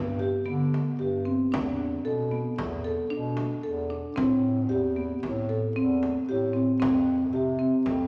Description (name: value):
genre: contemporary instrumental, chamber music in an uneven meter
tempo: 114 BPM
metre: 5/4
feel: straight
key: A minor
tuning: A4 = 438 Hz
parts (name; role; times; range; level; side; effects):
- marimba with soft mallets; arpeggios; 0.0-8.0 s; B3 to A4; -28 LUFS; equal; none
- breathy bass clarinet; bass; 0.0-8.1 s; E2 to D3; -34 LUFS; equal; none
- frame drum; percussion; 0.2-8.1 s; none; -40 LUFS; equal; none
room: wet recital hall reverb, RT60 1.7 s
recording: none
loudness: -27 LUFS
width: mono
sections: 0.0-8.1 A section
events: none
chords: 0.0 G; 1.5 E7sus4; 4.2 Am9; 6.8 Fsus2